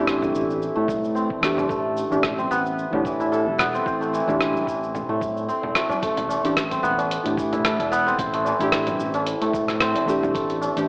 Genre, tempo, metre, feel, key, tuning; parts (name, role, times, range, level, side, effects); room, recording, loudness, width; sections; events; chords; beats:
organic downtempo; 111 BPM; 4/4; swing 55% on 16ths; A minor; A4 = 436 Hz
deep mellow chord stab; accompaniment; 0.0-10.9 s; E3 to G4; -30 LUFS; equal; chorus, sidechain pumping, tape echo
santur; arpeggios; 0.0-10.9 s; E3 to A4; -26 LUFS; equal; tape echo
smooth synth bass; bass; 0.0-10.9 s; E1 to A2; -32 LUFS; equal; sidechain pumping
dusty soul sampler-style drum kit; drums; 0.1-10.9 s; congas, hi-hat, rim click, shaker; -30 LUFS; equal
tabla; percussion; 0.2-10.7 s; -35 LUFS; equal
electronic kick drum; drums; 0.9-10.5 s; -38 LUFS; equal
moderate lush hall reverb, RT60 1.8 s; AM radio sound; -23 LUFS; mono
0.0-6.0 A section; 6.0-10.9 B section
0.0 Am7
0.08 0.62 1.16 | 1.70 2.24 2.78 3.32 | 3.86 4.40 4.94 5.49 | 6.03 6.57 7.11 7.65 | 8.19 8.73 9.27 9.81 | 10.35